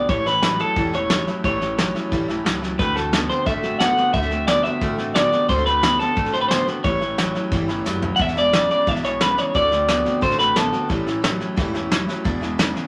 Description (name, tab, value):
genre	rockabilly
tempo	178 BPM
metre	4/4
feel	straight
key	A mixolydian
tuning	A4 = 439 Hz
part	electric guitar through a small old amp	melody	0.0-10.9 s	A4 to F#5	-22 LUFS	equal	none
part	picked steel-string acoustic guitar	accompaniment	0.0-12.9 s	E2 to F#4	-31 LUFS	equal	none
part	electric guitar through a small old amp	riff	0.0-12.9 s	E2 to B3	-29 LUFS	equal	none
part	upright bass	bass	0.0-12.7 s	E1 to D2	-34 LUFS	equal	none
part	soft brush drum kit	drums	0.1-12.8 s	hi-hat, kick drum, snare drum, toms	-26 LUFS	equal	none
room	moderate club reverb, RT60 0.5 s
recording	none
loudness	-20 LUFS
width	mono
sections	0.0-12.9 A section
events	drum fill 7.9-8.2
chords	0.1 A7; 2.8 D7; 6.8 A7; 8.2 E7; 9.5 D7; 10.9 A7; 12.3 E7